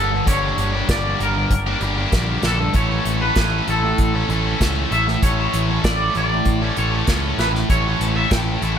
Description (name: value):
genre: indie rock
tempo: 97 BPM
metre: 4/4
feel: straight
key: unclear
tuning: A4 = 440 Hz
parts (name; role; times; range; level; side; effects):
- twangy electric guitar; melody; 0.0-8.8 s; A4 to G5; -23 LUFS; equal; lush chorus, dub echo
- scooped high-gain guitar; riff; 0.0-8.8 s; G2 to A4; -22 LUFS; equal; distortion, dub echo
- growling picked electric bass; bass; 0.0-8.8 s; G1 to C#2; -22 LUFS; equal; overdrive
- unplugged drum kit; drums; 0.3-8.8 s; hi-hat, kick drum, snare drum; -22 LUFS; equal; dub echo
room: little or no reverb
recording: echo-heavy mix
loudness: -17 LUFS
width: side -8 dB against mid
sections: 0.0-8.8 A section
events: none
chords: 0.0 Gm; 2.7 A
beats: | 0.27 0.89 1.51 2.13 | 2.75 3.37 3.99 4.61 | 5.23 5.84 6.46 7.08 | 7.70 8.32